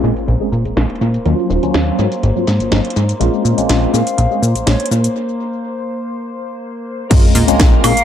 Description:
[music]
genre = filtered disco house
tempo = 123 BPM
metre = 4/4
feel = straight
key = Bb minor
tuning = A4 = 440 Hz
[part]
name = tine electric piano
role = accompaniment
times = 0.0-7.9 s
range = Gb3 to Bb4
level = -18 LUFS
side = left 1 dB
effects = overdrive, fast stereo tremolo, phaser, sidechain pumping, low-pass filter, analog delay
[part]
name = dark studio string section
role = sustained chords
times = 0.0-8.0 s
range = Bb3 to C5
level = -23 LUFS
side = left 2 dB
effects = vintage 12-bit sampler grit, sidechain pumping, low-pass filter
[part]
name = plucky analog bass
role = bass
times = 0.0-7.9 s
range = Eb1 to Bb2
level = -16 LUFS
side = equal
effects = sidechain pumping, low-pass filter
[part]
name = house drum kit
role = drums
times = 0.0-8.0 s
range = crash cymbal, hi-hat, shaker, snare drum, woodblock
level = -21 LUFS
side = equal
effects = sidechain pumping on hats, low-pass filter on hats, sidechain pumping on perc, low-pass filter on perc, low-pass filter on snare, sidechain pumping on cymbals, low-pass filter on cymbals, analog delay
[part]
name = sub drop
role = sound effects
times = 0.0-1.3, 7.1-8.0 s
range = none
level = -22 LUFS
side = equal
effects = none
[part]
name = hollow concert flute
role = melody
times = 3.9-4.9, 7.8-8.0 s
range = Db5 to F5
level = -20 LUFS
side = left 2 dB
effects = sidechain pumping, low-pass filter, analog delay
[part]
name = electronic kick drum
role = drums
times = 7.1-7.7 s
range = none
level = -11 LUFS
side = equal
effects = none
[sound]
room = moderate spring reverb, RT60 1.7 s, digital ambience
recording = echo-heavy mix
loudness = -13 LUFS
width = side -10 dB against mid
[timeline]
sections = 0.0-7.1 A section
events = impact 0.0-1.3, 7.1-8.0; filter sweep on drum 0.0-7.1; filter sweep 0.0-7.1; break 5.2-7.1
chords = 0.0 Bbm9; 1.3 Ebm9; 2.0 Ab9; 3.2 Bbm9; 5.2 Bbsus2; 7.1 Bbm9

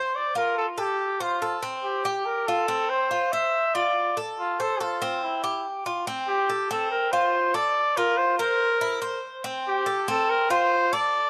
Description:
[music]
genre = latin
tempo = 142 BPM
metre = 4/4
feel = straight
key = F major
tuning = A4 = 440 Hz
[part]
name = warm trumpet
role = melody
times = 0.0-11.3 s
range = E4 to E5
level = -26 LUFS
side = equal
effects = slapback echo
[part]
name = Cuban tres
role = arpeggios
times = 0.0-11.3 s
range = C4 to C5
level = -30 LUFS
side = equal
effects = slapback echo
[sound]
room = little or no reverb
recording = recorded outdoors, with no room sound, lossy compression artefacts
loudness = -25 LUFS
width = mono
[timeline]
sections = 0.0-6.1 A section; 6.1-11.3 B section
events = none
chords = 0.1 F69; 1.0 Fadd9; 1.8 C5; 2.7 F5; 3.5 F6; 4.4 F; 5.2 C; 6.1 Am7/C; 6.9 C13sus4; 7.8 Fadd11; 8.6 C7; 9.4 Am7/C; 10.3 C13sus4

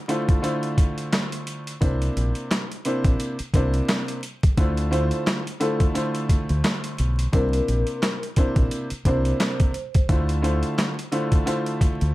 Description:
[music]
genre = hip hop, boom-bap hip-hop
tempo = 87 BPM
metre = 4/4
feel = swing 57% on 16ths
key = D minor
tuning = A4 = 440 Hz
[part]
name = warm upright piano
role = accompaniment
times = 0.1-12.1 s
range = C3 to C5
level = -26 LUFS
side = equal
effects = high-pass filter, low-pass filter
[part]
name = boom bap sampler-style drum kit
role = drums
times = 0.1-12.1 s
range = handclaps, hi-hat, kick drum, snare drum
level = -22 LUFS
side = equal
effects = none
[part]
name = deep dub fingered electric bass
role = bass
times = 1.8-12.1 s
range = Bb1 to D2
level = -23 LUFS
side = equal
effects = none
[part]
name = vibraphone with soft mallets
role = melody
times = 4.9-10.1 s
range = A4 to C5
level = -30 LUFS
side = left 1 dB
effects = high-pass filter, low-pass filter
[sound]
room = light reverb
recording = vinyl crackle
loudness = -20 LUFS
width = side -17 dB against mid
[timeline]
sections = 0.0-12.1 A section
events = break 0.0-1.8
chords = 0.0 Dm7; 1.8 C7; 4.6 Dm7; 7.3 C7; 10.1 Dm7

